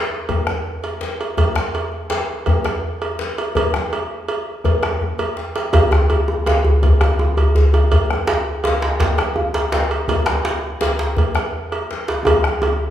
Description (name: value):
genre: west african traditional, West African drum ensemble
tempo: 110 BPM (dotted quarters)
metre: 12/8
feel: straight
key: none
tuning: none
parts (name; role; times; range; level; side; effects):
- bombo; percussion; 0.3-12.7 s; none; -22 LUFS; equal; none
- cowbell; percussion; 0.3-12.8 s; none; -23 LUFS; right 3 dB; none
- djembe; percussion; 0.3-12.9 s; none; -23 LUFS; left 2 dB; none
- djembe; percussion; 5.7-12.8 s; none; -16 LUFS; equal; none
room: wet recital hall reverb, RT60 1.4 s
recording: recorded in a church or concert hall, studio reverb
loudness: -16 LUFS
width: side -11 dB against mid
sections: 0.0-12.9 A section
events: drum fill 5.0-5.7, 12.3-12.9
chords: none